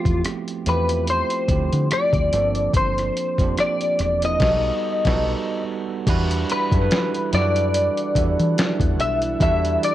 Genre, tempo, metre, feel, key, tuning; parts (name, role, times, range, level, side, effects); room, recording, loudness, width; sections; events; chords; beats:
R&B, neo-soul; 72 BPM; 4/4; swing 56% on 16ths; E minor from 6.1 s; A4 = 440 Hz
clean electric guitar; melody; 0.0-9.9 s; G4 to E5; -22 LUFS; left 2 dB; ensemble chorus
bell-like tine electric piano; accompaniment; 0.0-9.9 s; F3 to B4; -26 LUFS; right 7 dB; cassette tape
deep dub fingered electric bass; bass; 0.1-9.8 s; E1 to E3; -23 LUFS; equal; tube saturation
boom bap sampler-style drum kit; drums; 0.1-9.9 s; crash cymbal, finger snaps, hi-hat, kick drum, rim click, snare drum; -23 LUFS; equal; cassette tape
lush unison pad; sustained chords; 6.1-9.9 s; E3 to F#5; -33 LUFS; equal; chorus, cassette tape
little or no reverb; home recording on cassette; -18 LUFS; side -13 dB against mid
0.0-6.1 A section; 6.1-9.9 B section
band accent 4.4-6.1
0.0 Dm11; 2.3 Gm11; 4.4 B7b13; 6.1 Em9
0.24 1.07 1.91 | 2.74 3.57 4.41 5.24 | 6.07 6.91 7.74 8.57 | 9.41